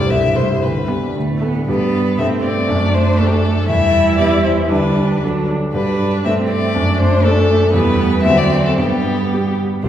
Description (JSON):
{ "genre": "quick classical-period movement for piano quartet", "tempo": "110-123 BPM", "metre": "2/4", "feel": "rubato", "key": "G major", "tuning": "A4 = 440 Hz", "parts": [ { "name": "rich violin", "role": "melody", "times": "0.0-9.9 s", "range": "C4 to E5", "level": "-19 LUFS", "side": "left 4 dB", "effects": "none" }, { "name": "rich cello", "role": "second line", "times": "0.0-9.9 s", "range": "F#3 to C4", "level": "-21 LUFS", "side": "right 5 dB", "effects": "none" }, { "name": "clear concert grand piano", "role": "accompaniment", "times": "0.0-9.9 s", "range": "C2 to B4", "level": "-17 LUFS", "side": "equal", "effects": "none" }, { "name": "rich viola", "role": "accompaniment", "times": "0.0-9.6 s", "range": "A3 to E4", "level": "-22 LUFS", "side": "right 2 dB", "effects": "none" } ], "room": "wet recital hall reverb, RT60 1.7 s", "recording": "recorded in a church or concert hall", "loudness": "-13 LUFS", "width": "side -10 dB against mid", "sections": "0.0-1.7 A section; 1.7-9.8 B section", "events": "none", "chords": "0.0 Am7/C; 0.6 G/D; 1.2 D5; 1.7 G; 2.2 Am7/G; 2.7 D/F#; 3.7 Em; 4.7 G/D; 5.2 D; 5.7 G; 6.3 Am7/G; 6.8 D/F#; 7.7 Em; 8.2 D7; 8.8 G" }